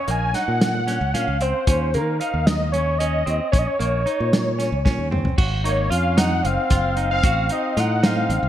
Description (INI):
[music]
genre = progressive instrumental, band music in an uneven meter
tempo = 226 BPM (eighths)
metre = 7/8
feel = straight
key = Bb minor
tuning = A4 = 440 Hz
[part]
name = wide unison lead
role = melody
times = 0.0-8.5 s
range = Bb4 to Ab5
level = -23 LUFS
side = equal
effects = digital delay
[part]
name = semi-hollow electric guitar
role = arpeggios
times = 0.0-8.5 s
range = Bb3 to Gb4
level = -29 LUFS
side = right 5 dB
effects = none
[part]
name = fingered electric bass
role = bass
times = 0.1-8.5 s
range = Gb1 to Eb3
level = -23 LUFS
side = equal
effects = none
[part]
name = warm soul drum kit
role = drums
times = 0.1-8.4 s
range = crash cymbal, hi-hat, kick drum, snare drum, toms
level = -21 LUFS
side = equal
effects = gated reverb
[part]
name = breathy flugelhorn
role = second line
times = 5.7-8.5 s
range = Bb3 to Eb4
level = -28 LUFS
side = left 4 dB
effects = none
[sound]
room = light reverb, small room ambience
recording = bright 1980s-style digital production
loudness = -18 LUFS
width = side -11 dB against mid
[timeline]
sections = 0.0-5.4 A section; 5.4-8.5 B section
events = drum fill 4.8-5.4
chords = 0.0 Bbm; 1.7 Eb5; 3.5 Bbm; 5.4 Ab7; 7.2 F7b9/A